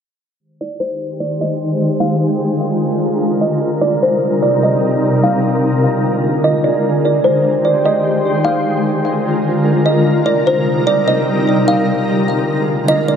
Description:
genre	hip hop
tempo	149 BPM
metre	4/4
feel	half-time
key	unclear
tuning	A4 = 440 Hz
part	shimmering ambient pad	sustained chords	1.0-13.2 s	C3 to C5	-15 LUFS	left 1 dB	chorus, built-in reverb, low-pass filter
part	kalimba	melody	0.6-13.2 s	C5 to F5	-17 LUFS	right 1 dB	low-pass filter, digital delay
room	moderate lush hall reverb, RT60 2.4 s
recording	none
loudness	-13 LUFS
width	side -7 dB against mid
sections	0.4-13.2 A section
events	filter sweep 0.4-13.2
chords	0.4 Abmaj7; 2.0 Bb7; 3.6 Cm7; 5.2 Bb7; 6.8 Abmaj7; 8.5 Bb7; 10.1 Cm7; 11.7 Bb7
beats	| 0.40 0.80 1.20 1.61 | 2.01 2.41 2.81 3.22 | 3.62 4.02 4.42 4.83 | 5.23 5.63 6.04 6.44 | 6.84 7.24 7.65 8.05 | 8.45 8.86 9.26 9.66 | 10.06 10.46 10.87 11.27 | 11.67 12.08 12.48 12.88

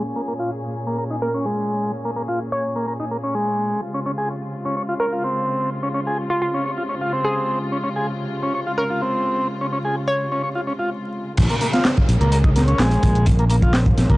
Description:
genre	breakbeat, breaks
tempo	127 BPM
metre	4/4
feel	straight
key	Bb minor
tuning	A4 = 440 Hz
part	hollow square pluck	melody	0.0-10.6 s	F4 to Db5	-25 LUFS	equal	chorus, small speaker sound, analog delay
part	dark studio string section	sustained chords	0.0-14.2 s	Bb2 to Ab4	-27 LUFS	equal	sidechain pumping
part	combo organ	riff	0.0-14.2 s	Ab3 to Db5	-23 LUFS	equal	overdrive, low-pass filter, analog delay
part	modern bright fingered electric bass	bass	11.4-14.2 s	Bb1 to Db2	-17 LUFS	equal	tube saturation
part	crunchy breakbeat drum kit	drums	11.4-14.2 s	crash cymbal, hi-hat, kick drum, snare drum	-18 LUFS	equal	none
part	punchy analog drum machine	drums	11.4-14.2 s	handclaps, hi-hat	-29 LUFS	equal	none
part	downlifter	sound effects	11.4-14.2 s	none	-33 LUFS	equal	none
room	little or no reverb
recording	dry, gritty hardware recording, vinyl crackle, low-pass filter, nothing above 10.4 kHz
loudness	-19 LUFS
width	side -19 dB against mid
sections	0.0-11.4 A section; 11.4-14.2 B section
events	filter sweep 0.0-11.4; break 10.9-11.4; drop 11.4-14.2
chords	0.0 Bbm7; 3.8 Dbmaj7; 11.4 Bbm7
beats	| 0.04 0.51 0.98 1.46 | 1.93 2.40 2.87 3.35 | 3.82 4.29 4.76 5.24 | 5.71 6.18 6.65 7.13 | 7.60 8.07 8.54 9.02 | 9.49 9.96 10.43 10.91 | 11.38 11.85 12.32 12.79 | 13.27 13.74

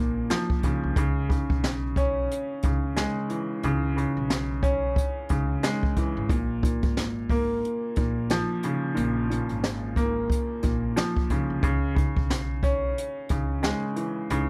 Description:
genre	hip hop, boom-bap hip-hop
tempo	90 BPM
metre	4/4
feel	swing 59% on 16ths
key	unclear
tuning	A4 = 440 Hz
part	clear upright piano	accompaniment	0.0-14.5 s	Bb2 to Db4	-29 LUFS	equal	cassette tape, high-pass filter, low-pass filter
part	upright bass	bass	0.0-14.5 s	Ab1 to Db2	-34 LUFS	equal	none
part	jazz brush drum kit	drums	0.3-14.5 s	hi-hat, kick drum, snare drum	-29 LUFS	equal	none
room	light reverb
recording	cassette tape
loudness	-26 LUFS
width	mono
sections	0.0-14.5 A section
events	none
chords	0.0 Bbm; 1.0 Dbm7; 6.3 Bbm7; 11.6 Dbm7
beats	0.30 | 0.96 1.63 2.30 2.96 | 3.63 4.30 4.96 5.63 | 6.30 6.96 7.63 8.30 | 8.96 9.63 10.30 10.96 | 11.63 12.30 12.96 13.63 | 14.30

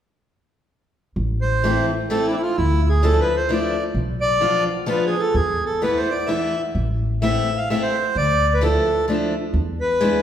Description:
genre	musette waltz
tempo	129 BPM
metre	3/4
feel	swing 55% on 8ths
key	A harmonic minor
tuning	A4 = 440 Hz
part	upright bass	bass	1.2-10.1 s	A1 to E2	-22 LUFS	equal	none
part	accordion	melody	1.4-10.2 s	D4 to F5	-20 LUFS	equal	slapback echo
part	picked steel-string acoustic guitar	accompaniment	1.6-10.2 s	E3 to F4	-24 LUFS	left 1 dB	none
room	wet recital hall reverb, RT60 1.6 s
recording	heard from further back in the room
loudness	-18 LUFS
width	side -9 dB against mid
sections	1.2-10.2 A section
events	none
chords	1.2 Am; 2.6 Dmadd9; 4.0 Bdim; 5.4 Esus4; 6.8 Amadd9; 8.2 Dmadd9; 9.5 E7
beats	| 1.17 1.64 2.11 | 2.57 3.03 3.49 | 3.95 4.42 4.88 | 5.35 5.82 6.29 | 6.76 7.23 7.69 | 8.16 8.62 9.08 | 9.54 10.01

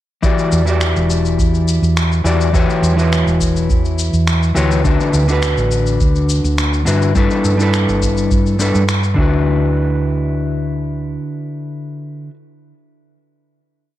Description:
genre	sunset chillout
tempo	104 BPM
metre	4/4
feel	straight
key	D major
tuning	A4 = 439 Hz
part	electric guitar at the edge of break-up	accompaniment	0.2-12.4 s	D3 to D5	-17 LUFS	left 1 dB	auto-pan, tape echo
part	electronic kick drum	drums	0.2-9.3 s	none	-17 LUFS	equal	overdrive
part	electronic shaker and finger snaps	drums	0.2-9.2 s	none	-24 LUFS	left 1 dB	none
part	hollow-body short-scale fingered electric bass	bass	0.5-11.2 s	E1 to G2	-16 LUFS	equal	none
room	light reverb, digital ambience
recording	dark, warm production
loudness	-13 LUFS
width	side -14 dB against mid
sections	0.2-9.5 groove; 9.5-11.8 final hit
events	none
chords	0.2 Em9; 2.5 Em13; 4.9 D69; 7.2 G69; 9.2 D69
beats	| 0.24 0.82 1.39 1.97 | 2.55 3.12 3.70 4.28 | 4.85 5.43 6.01 6.58 | 7.16 7.74 8.32 8.89 | 9.47 10.05 10.62 11.20

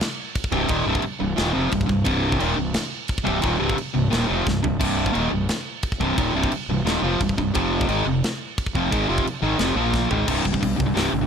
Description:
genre	heavy metal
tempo	175 BPM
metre	4/4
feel	straight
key	C minor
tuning	A4 = 440 Hz
part	tight metal drum kit	drums	0.0-11.1 s	crash cymbal, hi-hat, kick drum, snare drum, splash cymbal, toms	-26 LUFS	equal	none
part	distorted electric guitar	riff	0.5-11.3 s	C2 to Bb3	-21 LUFS	equal	distortion
part	fuzz fingered electric bass	bass	0.5-11.3 s	C1 to C2	-27 LUFS	equal	overdrive
room	small room ambience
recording	none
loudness	-20 LUFS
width	side -7 dB against mid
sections	0.0-10.3 A section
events	drum fill 4.5-4.8, 9.9-10.3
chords	0.0 Cm; 7.5 F5; 9.8 Bb5; 10.1 Ab5; 10.3 C5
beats	0.00 0.35 | 0.69 1.04 1.38 1.72 | 2.07 2.41 2.75 3.10 | 3.44 3.78 4.12 4.47 | 4.81 5.15 5.49 5.84 | 6.18 6.52 6.86 7.20 | 7.55 7.89 8.23 8.57 | 8.91 9.26 9.60 9.94 | 10.28 10.62 10.97

